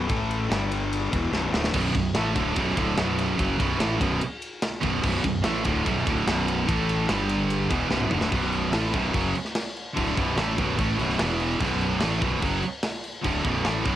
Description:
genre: heavy metal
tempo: 146 BPM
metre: 4/4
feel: straight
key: B minor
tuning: A4 = 440 Hz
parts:
  - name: distorted electric guitar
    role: riff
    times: 0.0-14.0 s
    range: B1 to A3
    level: -30 LUFS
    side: left 6 dB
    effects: overdrive
  - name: distorted electric guitar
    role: riff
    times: 0.0-14.0 s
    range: B1 to A3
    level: -31 LUFS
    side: right 1 dB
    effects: distortion
  - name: fuzz fingered electric bass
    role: bass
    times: 0.0-14.0 s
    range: B0 to A1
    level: -30 LUFS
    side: equal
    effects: overdrive
  - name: tight metal drum kit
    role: drums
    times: 0.1-13.9 s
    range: crash cymbal, kick drum, ride cymbal, snare drum, toms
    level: -29 LUFS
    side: equal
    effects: cassette tape
  - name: scooped high-gain guitar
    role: riff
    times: 1.7-14.0 s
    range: B1 to A3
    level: -27 LUFS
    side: right 6 dB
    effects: distortion
room: little or no reverb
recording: home recording on cassette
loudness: -22 LUFS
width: side -12 dB against mid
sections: 0.0-8.3 A section; 8.3-14.0 B section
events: drum fill 1.3-1.7, 7.9-8.3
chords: 0.1 A5; 0.5 G5; 1.1 Bm; 6.7 A5; 7.1 G5; 7.7 Bm; 11.2 E5; 11.6 Bm

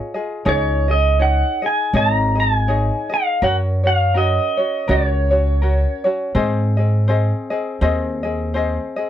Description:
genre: Hawaiian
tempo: 82 BPM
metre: 4/4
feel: swing 58% on 8ths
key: Db major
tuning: A4 = 445 Hz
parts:
  - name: tenor ukulele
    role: accompaniment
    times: 0.0-9.1 s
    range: C4 to Eb5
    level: -22 LUFS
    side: left 1 dB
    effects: none
  - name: pedal steel guitar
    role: melody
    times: 0.5-6.0 s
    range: Db5 to Bb5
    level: -19 LUFS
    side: right 1 dB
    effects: none
  - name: upright bass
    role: bass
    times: 0.5-8.8 s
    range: Ab1 to Ab2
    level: -18 LUFS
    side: equal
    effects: none
room: little or no reverb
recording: dry, close 1970s-style studio recording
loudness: -16 LUFS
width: side -11 dB against mid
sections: 0.5-9.1 A section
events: none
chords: 0.5 Dbsus2; 3.4 Gb; 6.4 Ab

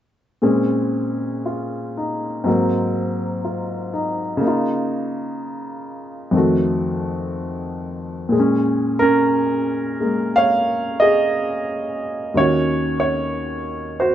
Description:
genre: solo jazz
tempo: 60 BPM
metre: 4/4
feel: swing 66% on 8ths, rubato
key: Bb minor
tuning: A4 = 438 Hz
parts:
  - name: warm upright piano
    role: solo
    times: 0.4-14.1 s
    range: Eb2 to F5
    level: -18 LUFS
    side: equal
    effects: none
room: moderate large studio reverb, RT60 0.9 s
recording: band playing live in one room, nothing above 7.8 kHz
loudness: -18 LUFS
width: side -11 dB against mid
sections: 0.4-8.3 A section; 8.3-14.1 B section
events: none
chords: 0.4 Bbm9; 2.5 Ab9; 4.4 Db69; 6.3 F7b9; 8.3 Bbm7; 12.4 Ebm7

